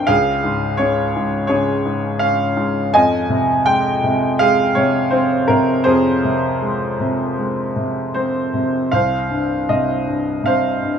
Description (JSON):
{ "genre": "classical, lyrical solo piano", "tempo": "77-85 BPM", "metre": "4/4", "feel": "rubato", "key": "F minor", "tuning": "A4 = 440 Hz", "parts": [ { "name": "clear grand piano", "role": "solo", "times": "0.0-11.0 s", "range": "C2 to Ab5", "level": "-15 LUFS", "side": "equal", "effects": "none" } ], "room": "moderate recital hall reverb, RT60 1.9 s", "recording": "minimal, uncompressed stereo recording", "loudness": "-15 LUFS", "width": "side -7 dB against mid", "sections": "0.0-11.0 A section", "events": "none", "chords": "0.1 Db; 2.9 Fm7; 8.9 Cm" }